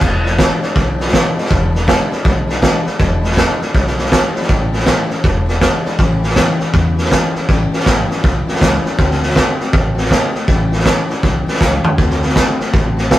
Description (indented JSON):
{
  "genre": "rockabilly",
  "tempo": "160 BPM",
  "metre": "4/4",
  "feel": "swing 63% on 8ths",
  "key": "A major",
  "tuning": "A4 = 440 Hz",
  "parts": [
    { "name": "picked steel-string acoustic guitar", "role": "accompaniment", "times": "0.0-13.2 s", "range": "E2 to F#4", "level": "-20 LUFS", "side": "left 3 dB", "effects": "none" },
    { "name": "upright bass", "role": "bass", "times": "0.0-13.2 s", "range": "E1 to E2", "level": "-19 LUFS", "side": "equal", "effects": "none" },
    { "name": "vintage drum kit", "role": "drums", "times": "0.0-13.2 s", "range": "crash cymbal, hi-hat, kick drum, snare drum, toms", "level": "-14 LUFS", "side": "equal", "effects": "none" }
  ],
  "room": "light reverb",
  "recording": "rough rehearsal-room recording, warm saturation",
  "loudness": "-12 LUFS",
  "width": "side -14 dB against mid",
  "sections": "0.0-6.0 A section; 6.0-13.2 B section",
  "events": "drum fill 11.6-12.0",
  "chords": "0.0 E7; 4.5 A7; 5.2 E7; 6.0 A7; 9.0 D7; 10.5 A7; 12.0 D7"
}